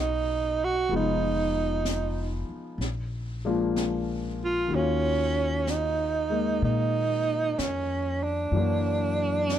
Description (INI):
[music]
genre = jazz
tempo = 63 BPM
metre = 4/4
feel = swing 67% on 8ths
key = Eb minor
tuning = A4 = 440 Hz
[part]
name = breathy tenor saxophone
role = melody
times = 0.0-9.6 s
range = Db4 to Gb4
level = -27 LUFS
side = right 4 dB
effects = slapback echo
[part]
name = clear concert grand piano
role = accompaniment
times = 0.0-9.6 s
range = Cb3 to F5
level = -30 LUFS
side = left 4 dB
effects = none
[part]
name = upright bass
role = bass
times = 0.0-9.6 s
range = F1 to Bb2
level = -31 LUFS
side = left 1 dB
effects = none
[part]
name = jazz brush drum kit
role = drums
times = 0.9-9.6 s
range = brushed snare drum, hi-hat, snare drum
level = -38 LUFS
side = equal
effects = none
[sound]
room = small room ambience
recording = none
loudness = -24 LUFS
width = side -10 dB against mid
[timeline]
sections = 0.0-9.6 A section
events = none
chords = 0.0 Abm11 (rootless); 0.9 Fm7b5; 2.8 Bb7; 4.7 Ebm9; 8.5 Gbaug7